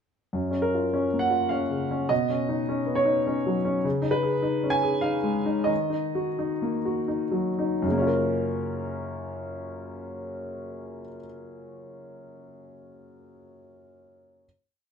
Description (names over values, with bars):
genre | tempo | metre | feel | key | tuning
neoclassical minimalist piano | 80-105 BPM | 3/4 | rubato | F# major | A4 = 439 Hz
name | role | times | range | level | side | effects
warm grand piano | solo | 0.3-14.5 s | F#2 to G#5 | -25 LUFS | equal | none
room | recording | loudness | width
moderate stone room reverb, RT60 1.0 s | band playing live in one room | -24 LUFS | side -7 dB against mid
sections
0.3-7.8 A section; 7.8-12.3 final chord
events
slowing down 3.0-7.8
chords
0.3 F#maj7; 2.1 Badd9; 3.8 C#add9; 5.7 D#m; 7.8 F#maj7